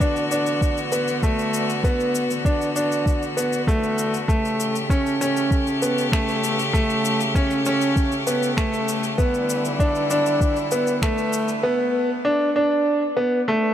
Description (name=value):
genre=piano and strings electronica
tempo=98 BPM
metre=4/4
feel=straight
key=D major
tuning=A4 = 440 Hz
part: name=clear string quartet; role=sustained chords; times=0.0-11.6 s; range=C#3 to G4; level=-26 LUFS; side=left 1 dB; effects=sidechain pumping
part: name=bright grand piano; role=riff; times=0.0-13.7 s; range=A3 to D4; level=-21 LUFS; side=equal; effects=digital delay
part: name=round analog bass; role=bass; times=0.0-10.9 s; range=none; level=barely audible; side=none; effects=none
part: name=electronic kick drum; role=drums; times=0.0-11.1 s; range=none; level=-21 LUFS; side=equal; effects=none
part: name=electronic shaker and finger snaps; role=drums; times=0.0-11.6 s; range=none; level=-32 LUFS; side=left 3 dB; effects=none
room=moderate huge ambient reverb, RT60 4.9 s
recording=none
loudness=-19 LUFS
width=side -10 dB against mid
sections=0.0-13.7 A section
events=build-up 0.0-13.7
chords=0.0 D6; 4.3 A7; 9.2 Em7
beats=0.01 0.62 1.23 | 1.85 2.46 3.07 3.68 | 4.30 4.91 5.52 6.13 | 6.75 7.36 7.97 8.58 | 9.19 9.81 10.42 11.03 | 11.64 12.26 12.87 13.48